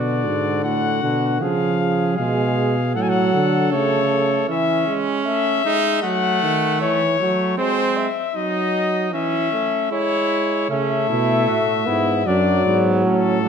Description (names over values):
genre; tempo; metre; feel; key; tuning
classical, imitative canzona for brass ensemble; 77 BPM; 4/4; straight; unclear; A4 = 440 Hz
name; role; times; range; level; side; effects
warm cornet; melody; 0.0-13.5 s; A4 to G#5; -22 LUFS; left 8 dB; none
warm trumpet; second line; 0.0-13.5 s; A3 to A4; -25 LUFS; right 6 dB; none
warm trombone; accompaniment; 0.0-13.5 s; D3 to B3; -22 LUFS; right 2 dB; none
mellow bass trombone; bass; 0.0-4.5, 10.7-13.5 s; F#2 to D3; -22 LUFS; right 2 dB; none
room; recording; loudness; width
wet recital hall reverb, RT60 1.6 s; none; -17 LUFS; side -7 dB against mid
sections
0.0-10.7 A section; 10.7-13.5 B section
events
none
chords
0.0 Bm; 1.4 C#; 2.9 F#m/A; 4.5 C#m/E; 6.0 F#m; 7.6 G#; 9.1 C#m/E; 10.7 A; 12.3 D/F#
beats
0.64 | 1.41 2.18 2.94 3.71 | 4.48 5.25 6.03 6.80 | 7.58 8.35 9.13 9.91 | 10.70 11.48 12.26 13.04